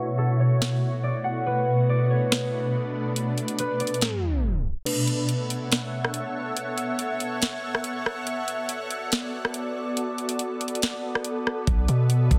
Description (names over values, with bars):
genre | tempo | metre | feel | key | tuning
hip hop, atmospheric cloud-rap | 141 BPM | 4/4 | half-time | B minor | A4 = 440 Hz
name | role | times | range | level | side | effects
concert harp | melody | 0.0-5.7 s | A4 to F#5 | -32 LUFS | equal | low-pass filter, tape echo
shimmering ambient pad | sustained chords | 0.0-12.4 s | B2 to F#5 | -28 LUFS | equal | chorus, built-in reverb, sidechain pumping, low-pass filter
trap drum kit | drums | 0.6-12.4 s | crash cymbal, hi-hat, kick drum, rim click, snare drum | -28 LUFS | equal | soft clipping on snare
long sustained 808-style bass | bass | 11.7-12.4 s | B1 to B2 | -22 LUFS | equal | none
room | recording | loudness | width
light reverb, digital ambience | dense, heavily limited modern master, tape stop | -26 LUFS | mono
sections
0.0-4.9 A section; 4.9-12.4 B section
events
filter sweep 0.0-4.9; tape stop 4.0-4.9; break 4.9-11.7; kick muted 10.8-11.7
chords
0.0 Bm11; 1.5 Bm7; 4.9 B9sus4; 8.3 Bm7; 11.7 Dmaj9/B (rootless)